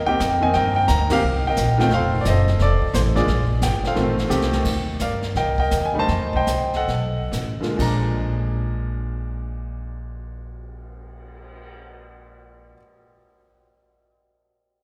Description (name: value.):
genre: jazz piano trio.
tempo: 122-175 BPM.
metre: 4/4.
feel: swing 65% on 8ths.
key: Bb mixolydian.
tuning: A4 = 440 Hz.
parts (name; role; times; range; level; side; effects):
warm grand piano; melody; 0.0-12.8 s; Bb2 to Bb5; -24 LUFS; equal; none.
upright bass; bass; 0.0-12.7 s; F1 to G2; -25 LUFS; equal; none.
jazz brush drum kit; drums; 0.2-11.6 s; brushed snare drum, crash cymbal, cymbal swell, hi-hat, kick drum, ride cymbal, snare drum; -33 LUFS; equal; none.
room: wet church reverb, RT60 2.9 s.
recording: recorded in a church or concert hall.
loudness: -21 LUFS.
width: mono.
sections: 0.0-4.6 A section; 4.6-7.8 B section; 7.8-11.7 C section.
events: band accent 1.0; drum fill 4.3-4.6; slowing down 4.6-7.8.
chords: 0.0 Cm7; 1.9 F7; 3.3 Bb7; 4.0 F7; 4.6 Ebmaj9; 5.3 Cm7; 6.1 F9; 6.9 B7; 7.8 Bb7.